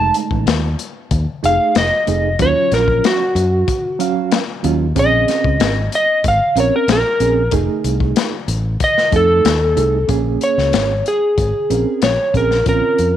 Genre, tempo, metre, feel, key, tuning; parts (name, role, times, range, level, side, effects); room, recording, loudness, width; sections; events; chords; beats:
straight-eighth soul blues; 94 BPM; 4/4; straight; Bb minor; A4 = 439 Hz
electric slide guitar; melody; 0.0-13.2 s; Gb4 to A5; -16 LUFS; equal
bright reed electric piano; accompaniment; 0.0-13.2 s; Gb3 to F5; -21 LUFS; right 10 dB; overdrive, fast tremolo
fingered electric bass; bass; 0.0-13.2 s; F1 to Gb2; -18 LUFS; equal
crunchy breakbeat drum kit; drums; 0.1-13.1 s; hi-hat, kick drum, snare drum; -20 LUFS; left 5 dB
light reverb, small room ambience; 1960s-style stereo; -13 LUFS; side -11 dB against mid
0.0-10.1 A section; 10.1-13.2 B section
electric slide guitar solo 0.0-10.1
0.0 F7#9; 2.4 Ebm7; 5.0 Bbm7; 7.5 F7#9; 10.1 Bbm7
0.47 1.11 1.76 | 2.40 3.04 3.68 4.32 | 4.96 5.61 6.25 6.89 | 7.53 8.17 8.81 9.45 | 10.10 10.74 11.38 12.02 | 12.66